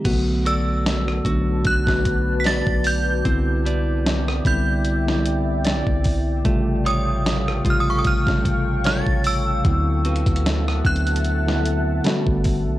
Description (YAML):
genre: contemporary R&B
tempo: 75 BPM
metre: 4/4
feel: swing 54% on 16ths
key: unclear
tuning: A4 = 440 Hz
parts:
  - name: mellow tine electric piano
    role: accompaniment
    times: 0.0-12.8 s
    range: C3 to F#4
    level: -24 LUFS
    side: left 1 dB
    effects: slow stereo tremolo
  - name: direct-recorded clean electric guitar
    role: arpeggios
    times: 0.0-12.8 s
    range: D3 to D5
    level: -31 LUFS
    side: right 2 dB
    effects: tape echo
  - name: deep dark ambient pad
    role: sustained chords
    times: 1.1-12.8 s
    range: F#4 to D6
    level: -30 LUFS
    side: equal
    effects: chorus, built-in reverb, sidechain pumping
  - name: long sustained 808-style bass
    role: bass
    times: 0.1-12.8 s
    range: G1 to D2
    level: -23 LUFS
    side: equal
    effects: none
  - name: clean 12-bit digital drum machine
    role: drums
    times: 0.1-12.7 s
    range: crash cymbal, hi-hat, kick drum, rim click, snare drum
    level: -23 LUFS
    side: equal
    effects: none
  - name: synth chime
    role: melody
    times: 0.5-12.0 s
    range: C#6 to B6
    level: -25 LUFS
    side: right 1 dB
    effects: ensemble chorus
room: little or no reverb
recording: dry, gritty hardware recording, cassette tape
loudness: -18 LUFS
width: side -15 dB against mid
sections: 0.1-12.8 A section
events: none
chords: 0.1 Bm7; 3.3 Cmaj9; 6.5 A7alt; 9.7 D13; 12.1 Gmaj9